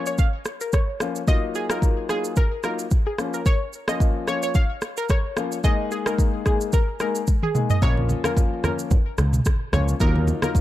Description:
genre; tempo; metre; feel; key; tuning
afrobeats; 110 BPM; 4/4; swing 55% on 16ths; Bb minor; A4 = 441 Hz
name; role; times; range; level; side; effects
analog pluck; melody; 0.0-10.5 s; Ab4 to F5; -28 LUFS; equal; chorus, ping-pong delay
warm concert grand piano; accompaniment; 0.0-10.6 s; F3 to Ab4; -28 LUFS; left 5 dB; none
afro-pop drum kit; drums; 0.1-10.6 s; kick drum, rim click, shaker, toms; -22 LUFS; equal; none
overdriven picked electric bass; bass; 7.8-10.3 s; Bb1 to Eb2; -21 LUFS; equal; none
congas; percussion; 8.0-10.6 s; none; -28 LUFS; right 2 dB; none
room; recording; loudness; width
digital ambience; dark, warm production; -20 LUFS; side -14 dB against mid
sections
0.0-7.8 A section; 7.8-10.6 B section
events
drum fill 7.3-7.8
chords
0.0 Bbm; 1.3 Ebmadd9; 3.2 Bbm; 5.6 Absus2; 7.8 Bbm; 10.0 Ebmadd9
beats
0.18 0.73 | 1.28 1.82 2.37 2.91 | 3.46 4.00 4.55 5.09 | 5.64 6.18 6.73 7.28 | 7.82 8.37 8.91 9.46 | 10.00 10.55

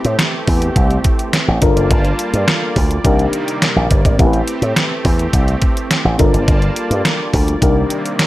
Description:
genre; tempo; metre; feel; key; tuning
early-eighties boogie funk; 105 BPM; 4/4; straight; A phrygian; A4 = 440 Hz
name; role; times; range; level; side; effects
mellow FM electric piano; accompaniment; 0.0-8.3 s; C4 to B4; -21 LUFS; left 3 dB; chorus
brassy analog pad; sustained chords; 0.0-8.3 s; C3 to A5; -23 LUFS; right 2 dB; chorus
slap bass with an envelope filter; bass; 0.0-7.8 s; F#1 to A2; -16 LUFS; equal; none
detuned 8-bit digital drum machine; drums; 0.0-8.3 s; hi-hat, kick drum, snare drum; -15 LUFS; equal; gated reverb
room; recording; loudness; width
digital ambience; none; -12 LUFS; side -16 dB against mid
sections
0.0-8.3 A section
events
none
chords
0.0 Am9; 1.6 Gm9; 3.0 Cm9; 4.2 Am9; 6.2 Gm9; 7.6 Cm9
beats
0.19 0.76 1.33 | 1.91 2.48 3.05 3.62 | 4.19 4.76 5.33 5.91 | 6.48 7.05 7.62 8.19

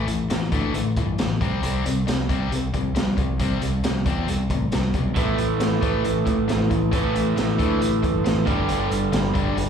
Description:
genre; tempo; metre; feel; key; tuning
classic rock; 136 BPM; 4/4; straight; unclear; A4 = 440 Hz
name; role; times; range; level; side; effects
tight distorted guitar; riff; 0.0-9.7 s; G2 to C4; -26 LUFS; left 8 dB; distortion, slapback echo
growling fingered electric bass; bass; 0.0-9.7 s; G1 to E2; -25 LUFS; equal; overdrive
raw garage drum kit; drums; 0.1-9.7 s; hi-hat, kick drum, snare drum; -26 LUFS; equal; none
overdriven electric guitar; riff; 5.1-9.7 s; G2 to A3; -24 LUFS; right 10 dB; spring reverb, slapback echo
room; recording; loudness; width
light reverb, studio reverb; live gig heard through the venue's PA, club reverb; -20 LUFS; side -7 dB against mid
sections
0.0-9.7 A section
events
none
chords
0.0 A5; 1.4 C5; 5.2 A5; 8.5 G5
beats
0.29 0.74 1.18 | 1.62 2.07 2.51 2.95 | 3.40 3.84 4.28 4.72 | 5.16 5.61 6.05 6.49 | 6.93 7.37 7.81 8.25 | 8.69 9.13 9.57

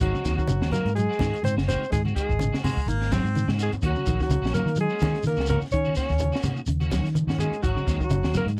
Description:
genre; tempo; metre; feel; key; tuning
afrobeat; 126 BPM; 4/4; swing 56% on 16ths; unclear; A4 = 440 Hz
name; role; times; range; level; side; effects
breathy alto saxophone; melody; 0.0-8.5 s; Gb4 to Db5; -31 LUFS; equal; none
bright trombone; second line; 0.0-8.5 s; Gb3 to Db4; -38 LUFS; equal; none
clean electric guitar; arpeggios; 0.0-8.5 s; C3 to Gb3; -33 LUFS; equal; subtle chorus
electric guitar at the edge of break-up; stabs; 0.0-8.5 s; Eb3 to Gb4; -37 LUFS; equal; ensemble chorus
fingered electric bass; bass; 0.0-8.6 s; Gb1 to Eb3; -28 LUFS; equal; none
compact cocktail drum kit; drums; 0.0-8.6 s; hi-hat, kick drum, snare drum; -32 LUFS; equal; none
shekere; percussion; 0.0-8.6 s; none; -38 LUFS; equal; none
congas; percussion; 0.5-8.5 s; none; -33 LUFS; equal; none
bright baritone saxophone; second line; 2.6-3.5 s; Ab3 to C4; -33 LUFS; equal; none
room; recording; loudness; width
little or no reverb; dry, close 1970s-style studio recording; -25 LUFS; mono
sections
0.0-8.6 A section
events
drum fill 3.5-3.8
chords
0.0 Ab7; 3.8 Ebm7; 7.6 Ab7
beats
| 0.01 0.49 0.96 1.44 | 1.92 2.39 2.87 3.34 | 3.82 4.30 4.77 5.25 | 5.72 6.20 6.68 7.15 | 7.63 8.10 8.58

